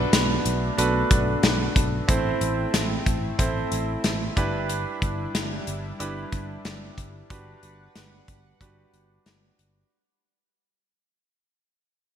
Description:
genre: 1980s-style pop.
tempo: 92 BPM.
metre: 4/4.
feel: straight.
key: G major.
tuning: A4 = 439 Hz.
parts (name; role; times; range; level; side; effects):
clear grand piano; accompaniment; 0.0-9.9 s; C4 to C5; -28 LUFS; right 3 dB; none.
chorused pulse-width pad; sustained chords; 0.0-9.9 s; G3 to F#5; -32 LUFS; left 2 dB; none.
sustaining fretless electric bass; bass; 0.0-9.8 s; G1 to B1; -29 LUFS; equal; ensemble chorus.
modern studio drum kit; drums; 0.1-9.7 s; hi-hat, kick drum, snare drum; -25 LUFS; left 1 dB; gated reverb.
room: moderate lush hall reverb, RT60 2.6 s.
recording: bright 1980s-style digital production.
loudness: -22 LUFS.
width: side -9 dB against mid.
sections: 0.0-9.9 A section.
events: fade-out 0.0-9.9.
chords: 0.0 Bm7; 2.1 Am; 4.4 Em7/G; 7.3 Gmaj7.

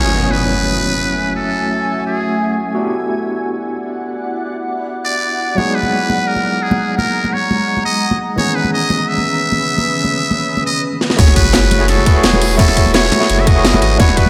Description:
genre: liquid drum and bass.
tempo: 171 BPM.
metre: 4/4.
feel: straight.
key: F# dorian.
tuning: A4 = 440 Hz.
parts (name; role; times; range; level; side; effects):
trumpet with metal mute; melody; 0.0-2.6, 5.0-14.3 s; G#4 to E5; -20 LUFS; equal; analog delay.
overdriven tine electric piano; accompaniment; 0.0-14.3 s; D#3 to G#5; -22 LUFS; equal; medium tremolo, analog delay.
shimmering ambient pad; sustained chords; 0.0-10.8 s; C#3 to D#6; -25 LUFS; equal; chorus, built-in reverb, sidechain pumping.
impact and sub drop; sound effects; 0.0-1.4, 11.2-12.6 s; none; -21 LUFS; equal; none.
congas; percussion; 5.6-14.3 s; none; -23 LUFS; equal; analog delay.
garage drum kit; drums; 11.0-14.2 s; crash cymbal, hi-hat, snare drum; -20 LUFS; equal; analog delay.
warm sub bass; bass; 11.2-14.3 s; E1 to G#1; -20 LUFS; equal; none.
electronic kick drum; drums; 11.2-14.2 s; none; -14 LUFS; equal; none.
raw garage drum kit; drums; 11.2-14.3 s; hi-hat, ride cymbal, snare drum; -25 LUFS; equal; high-pass filter on cymbals, high-pass filter on hats, high-pass filter on snare, high-pass filter on room, analog delay.
room: moderate echo chamber reverb, RT60 1.3 s, small room reverb.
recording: echo-heavy mix.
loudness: -15 LUFS.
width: mono.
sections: 0.0-11.2 A section; 11.2-14.3 B section.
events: impact 0.0-1.4, 11.2-12.6; drum fill 11.0; drop 11.2-14.3.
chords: 0.0 F#m9; 2.8 Em9; 5.6 G#m9; 8.4 C#m9; 11.2 F#m9.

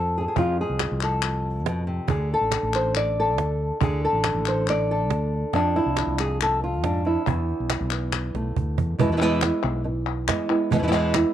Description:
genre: flamenco.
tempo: 139 BPM.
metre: 4/4.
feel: straight.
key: E phrygian dominant.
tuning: A4 = 440 Hz.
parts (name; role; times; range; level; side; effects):
flamenco guitar; melody; 0.0-11.3 s; E2 to D5; -24 LUFS; right 1 dB; none.
mellow fretless electric bass; bass; 0.0-11.2 s; A1 to F2; -27 LUFS; equal; none.
cajon; percussion; 0.4-11.3 s; none; -26 LUFS; right 6 dB; none.
palmas hand claps; percussion; 0.4-11.3 s; none; -29 LUFS; left 12 dB; none.
room: light reverb, studio ambience.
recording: 1960s-style stereo with parts hard left and right.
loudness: -21 LUFS.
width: side -11 dB against mid.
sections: 0.0-9.0 A section; 9.0-11.3 B section.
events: drum fill 8.1-9.0.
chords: 0.0 F; 2.1 D5; 5.5 F5; 7.3 Esus4; 9.0 E.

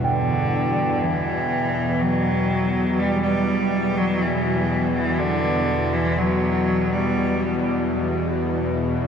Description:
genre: dark ambient drone.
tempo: 61 BPM.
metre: 4/4.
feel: straight.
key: E minor.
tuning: A4 = 442 Hz.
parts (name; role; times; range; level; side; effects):
rich cello; melody; 0.0-7.7 s; D3 to G3; -22 LUFS; equal; tape echo.
bowed-like drone; drone; 0.0-9.1 s; E2 to B2; -23 LUFS; left 1 dB; built-in reverb.
bronze singing bowl; texture; 0.0-9.1 s; G5; -30 LUFS; right 3 dB; none.
room: wet huge ambient reverb, RT60 8.7 s.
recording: none.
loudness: -19 LUFS.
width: side -7 dB against mid.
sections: 0.1-9.1 A section.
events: none.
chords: 0.1 Emadd9.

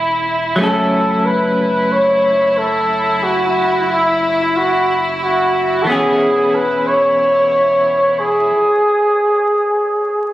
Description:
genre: trip hop.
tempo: free time.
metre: none.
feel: none.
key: F# minor.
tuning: A4 = 439 Hz.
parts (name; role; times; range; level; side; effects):
clean electric guitar; accompaniment; 0.0-8.5 s; E3 to A4; -20 LUFS; left 1 dB; tremolo.
rich chamber violin section; sustained chords; 0.0-8.5 s; E4; -20 LUFS; equal; low-pass filter.
soft dub sub bass; bass; 0.0-8.5 s; E1 to F#1; -34 LUFS; equal; tube saturation.
trumpet with bucket mute; melody; 0.6-10.3 s; E4 to C#5; -14 LUFS; equal; dub echo.
room: light reverb.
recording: recorded on a phone in the room, studio reverb, vinyl crackle, compression.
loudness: -12 LUFS.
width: side -14 dB against mid.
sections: 0.0-10.3 A section.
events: none.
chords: 0.0 E6; 0.6 F#m; 5.9 E6.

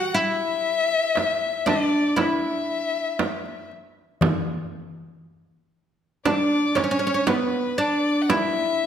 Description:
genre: Arabic maqam ensemble.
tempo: 118 BPM (eighths).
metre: 10/8.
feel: straight.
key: unclear.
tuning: A4 = 440 Hz.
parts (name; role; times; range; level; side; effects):
oud; melody; 0.0-8.9 s; B3 to F#4; -23 LUFS; right 1 dB; none.
rich violin; second line; 0.0-8.9 s; B4 to F#5; -25 LUFS; left 5 dB; none.
darbuka; percussion; 0.1-8.7 s; none; -29 LUFS; left 2 dB; none.
frame drum; percussion; 1.2-8.5 s; none; -27 LUFS; right 5 dB; none.
room: moderate recital hall reverb, RT60 1.5 s.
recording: none.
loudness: -20 LUFS.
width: side -9 dB against mid.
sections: 0.0-8.9 A section.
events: none.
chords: none.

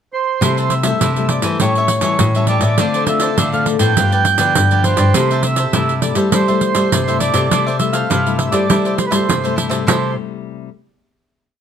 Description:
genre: samba and choro.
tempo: 102 BPM.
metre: 4/4.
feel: straight.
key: C major.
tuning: A4 = 439 Hz.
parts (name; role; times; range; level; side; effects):
mellow accordion; melody; 0.1-10.2 s; B4 to G5; -18 LUFS; right 4 dB; none.
cavaquinho; accompaniment; 0.4-10.1 s; E4 to E5; -24 LUFS; equal; none.
nylon-string guitar; accompaniment; 0.4-10.7 s; G2 to F4; -22 LUFS; left 11 dB; none.
nylon-string guitar; bass; 0.4-10.2 s; G2 to G3; -18 LUFS; equal; none.
pandeiro; percussion; 0.4-10.0 s; none; -19 LUFS; right 5 dB; none.
room: light reverb.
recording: close, detailed microphones.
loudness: -13 LUFS.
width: side -8 dB against mid.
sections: 0.0-0.4 pickup bar; 0.4-9.9 A section; 9.9-11.6 final chord.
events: none.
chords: 0.4 C6; 1.6 A7; 2.8 Dm7; 4.0 G7; 5.2 C6.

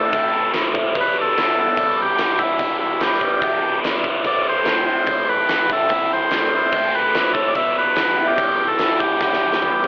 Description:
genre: garage rock duo or trio.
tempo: 146 BPM.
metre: 4/4.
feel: straight.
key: E minor.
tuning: A4 = 441 Hz.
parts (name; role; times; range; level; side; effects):
overdriven combo organ; melody; 0.0-9.9 s; E4 to E5; -18 LUFS; equal; none.
crunchy overdriven guitar; riff; 0.0-9.9 s; E2 to E4; -21 LUFS; equal; phaser.
oversized low-tuned drum kit; drums; 0.1-9.9 s; crash cymbal, kick drum, snare drum, toms; -23 LUFS; equal; none.
room: light reverb.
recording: telephone sound.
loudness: -16 LUFS.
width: side -28 dB against mid.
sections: 0.0-9.9 A section.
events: drum fill 9.2-9.9.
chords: 0.0 Am; 0.9 Em; 4.2 Am; 7.5 Em.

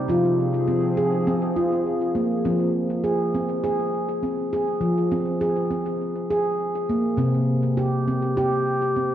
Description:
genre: world meditative, meditative tuned percussion.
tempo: 102 BPM.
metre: 4/4.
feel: swing 54% on 16ths.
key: F minor.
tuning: A4 = 438 Hz.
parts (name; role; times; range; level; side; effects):
warbly tape-like pad; sustained chords; 0.0-2.4 s; F3 to Ab4; -27 LUFS; left 2 dB; chorus, built-in reverb.
handpan; arpeggios; 0.0-9.1 s; C3 to Ab4; -21 LUFS; equal; ping-pong delay.
room: wet scoring stage reverb, RT60 1.8 s, studio reverb.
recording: worn, warbling old tape, cassette tape, warbly pitch drift.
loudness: -21 LUFS.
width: side -11 dB against mid.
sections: 0.0-2.4 A section; 2.4-9.1 B section.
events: none.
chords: 0.1 Fm; 7.2 C5.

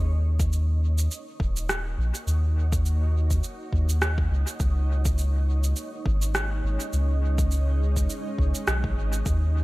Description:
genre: ambient dub.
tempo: 103 BPM.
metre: 4/4.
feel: swing 56% on 16ths.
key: unclear.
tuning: A4 = 440 Hz.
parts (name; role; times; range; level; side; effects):
granular cloud pad; sustained chords; 0.0-9.6 s; Ab3 to Eb5; -36 LUFS; right 1 dB; built-in reverb.
soft dub sub bass; bass; 0.0-9.6 s; Eb1 to Eb2; -23 LUFS; equal; none.
electronic cabasa and rim click; drums; 0.4-9.4 s; none; -31 LUFS; right 1 dB; dub echo.
electronic kick drum; drums; 0.4-9.4 s; none; -28 LUFS; equal; none.
room: digital ambience.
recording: none.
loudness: -22 LUFS.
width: side -20 dB against mid.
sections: 0.0-9.6 A section.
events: fade-in on ambient pad 0.0-9.6.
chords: 0.0 Ebm7; 4.6 Dbsus2.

